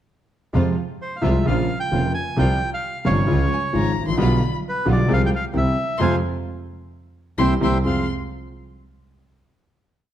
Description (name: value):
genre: tango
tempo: 132 BPM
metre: 4/4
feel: rubato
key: F harmonic minor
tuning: A4 = 441 Hz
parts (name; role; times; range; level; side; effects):
- warm concert grand piano; accompaniment; 0.5-8.0 s; F1 to Ab4; -22 LUFS; left 1 dB; none
- warm studio string section; stabs; 0.5-8.0 s; G3 to F4; -30 LUFS; right 3 dB; none
- bright double bass; bass; 0.5-8.0 s; F1 to F2; -23 LUFS; right 1 dB; none
- bandoneon; melody; 1.0-8.1 s; B4 to Ab5; -26 LUFS; right 2 dB; none
- rich violin; second line; 3.5-8.1 s; Ab5 to C6; -29 LUFS; left 6 dB; none
room: moderate recital hall reverb, RT60 1.4 s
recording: dark, warm production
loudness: -18 LUFS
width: side -11 dB against mid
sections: 0.5-7.8 A section; 7.8-9.7 final chord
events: band accent 6.0-7.8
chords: 0.5 Fm; 1.5 Bbm; 2.4 Csus4; 3.3 Db; 4.2 G7/B; 5.1 Fm/C; 5.5 C; 6.0 Fm; 7.4 C7; 7.8 Fm